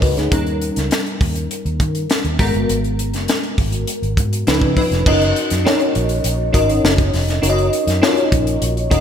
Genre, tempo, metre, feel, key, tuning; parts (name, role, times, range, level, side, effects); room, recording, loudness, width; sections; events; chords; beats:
polished 1980s jazz-funk pop; 101 BPM; 4/4; straight; A4 = 438 Hz
bell-like FM electric piano; accompaniment; 0.0-9.0 s; E#3 to D#5; -19 LUFS; left 1 dB; ensemble chorus
vintage muted fingered electric bass; bass; 0.0-9.0 s; E#1 to D#3; -20 LUFS; right 1 dB
crisp fusion drum kit; drums; 0.0-9.0 s; crash cymbal, hi-hat, kick drum, snare drum; -19 LUFS; equal; gated reverb
light reverb, small room ambience; bright 1980s-style digital production; -15 LUFS; side -8 dB against mid
0.0-5.1 A section; 5.1-9.0 B section
0.3 D#7; 2.4 G#m9; 4.5 C#9; 5.1 D#m7/F#
| 0.32 0.91 1.50 2.10 | 2.69 3.28 3.88 4.47 | 5.06 5.66 6.25 6.84 | 7.43 8.03 8.62